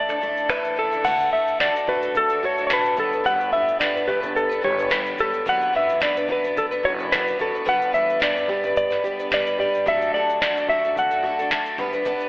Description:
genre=acoustic pop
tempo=109 BPM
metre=4/4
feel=swing 55% on 16ths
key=D major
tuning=A4 = 442 Hz
part: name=clean lap steel guitar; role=melody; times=0.0-11.5 s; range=A4 to F#5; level=-21 LUFS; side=equal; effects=none
part: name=picked twelve-string acoustic guitar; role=accompaniment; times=0.0-12.3 s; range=A2 to B4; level=-26 LUFS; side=left 1 dB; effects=slapback echo
part: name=nylon-string guitar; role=arpeggios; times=0.0-12.3 s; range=E3 to G4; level=-32 LUFS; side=right 1 dB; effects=slapback echo, tape echo
part: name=upright bass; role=bass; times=0.0-12.3 s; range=E1 to D2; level=-38 LUFS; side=equal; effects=none
part: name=booming analog drum machine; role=drums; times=0.1-12.3 s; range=crash cymbal, finger snaps, kick drum, shaker, snare drum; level=-27 LUFS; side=equal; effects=none
room=moderate lush hall reverb, RT60 2.0 s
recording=big arena sound, telephone sound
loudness=-19 LUFS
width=side -22 dB against mid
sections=0.0-1.0 A section; 1.0-12.3 B section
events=none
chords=0.0 Asus4; 1.0 D; 3.0 G; 5.5 Bm/F#; 7.7 G; 9.9 D; 11.8 G

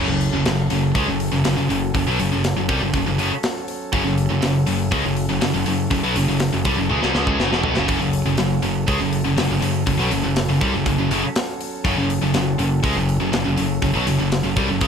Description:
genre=heavy metal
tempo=121 BPM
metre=4/4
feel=straight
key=F# minor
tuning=A4 = 440 Hz
part: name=pipe organ, cornet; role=sustained chords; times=0.0-14.9 s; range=F#3 to A4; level=-31 LUFS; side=right 3 dB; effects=none
part: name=scooped high-gain guitar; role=riff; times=0.0-14.9 s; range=E2 to C#4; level=-22 LUFS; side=left 11 dB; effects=distortion
part: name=scooped high-gain guitar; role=riff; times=0.0-14.9 s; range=E2 to C#4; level=-23 LUFS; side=right 10 dB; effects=distortion
part: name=picked electric bass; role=bass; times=0.0-14.9 s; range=E1 to C#2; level=-25 LUFS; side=equal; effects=none
part: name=tight metal drum kit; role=drums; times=0.2-14.9 s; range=hi-hat, kick drum, snare drum, splash cymbal, toms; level=-25 LUFS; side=left 1 dB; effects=none
room=little or no reverb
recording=none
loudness=-18 LUFS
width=side -7 dB against mid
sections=0.0-14.9 A section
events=drum fill 6.9-7.9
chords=0.0 F#m

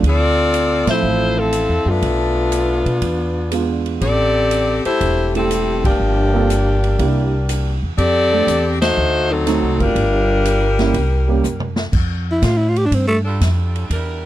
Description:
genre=jazz, big band swing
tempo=121 BPM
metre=4/4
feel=swing 68% on 8ths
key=F major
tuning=A4 = 440 Hz
part: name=warm concert grand piano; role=accompaniment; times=0.0-11.4 s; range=F3 to E5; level=-21 LUFS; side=right 8 dB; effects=none
part: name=upright bass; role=bass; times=0.0-14.3 s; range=E1 to B2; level=-19 LUFS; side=equal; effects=none
part: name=swinging big-band drum kit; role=drums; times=0.0-14.1 s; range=crash cymbal, hi-hat, kick drum, ride cymbal, snare drum, toms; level=-26 LUFS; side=right 1 dB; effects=none
part: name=warm saxophone section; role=melody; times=0.1-11.8 s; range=F3 to D5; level=-17 LUFS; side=left 2 dB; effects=none
part: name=growling tenor saxophone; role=melody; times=12.3-13.2 s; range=A3 to G4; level=-17 LUFS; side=equal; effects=none
part: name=edgy saxophone section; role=sustained chords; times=13.2-14.3 s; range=G3 to Bb4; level=-28 LUFS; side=right 2 dB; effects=none
room=little or no reverb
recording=dry, close 1970s-style studio recording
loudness=-15 LUFS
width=side -14 dB against mid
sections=0.0-11.9 A section; 11.9-14.3 B section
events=band accent 0.8, 5.7, 8.7; drum fill 11.4-11.9; tenor saxophone solo 11.9-14.3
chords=0.0 Dm9; 2.0 Bm7b5; 3.0 E7b9; 4.0 Am7; 6.0 Gm11; 7.0 C9; 8.0 F69; 9.0 D7b9; 10.0 Gm7; 10.9 C5; 11.9 F69

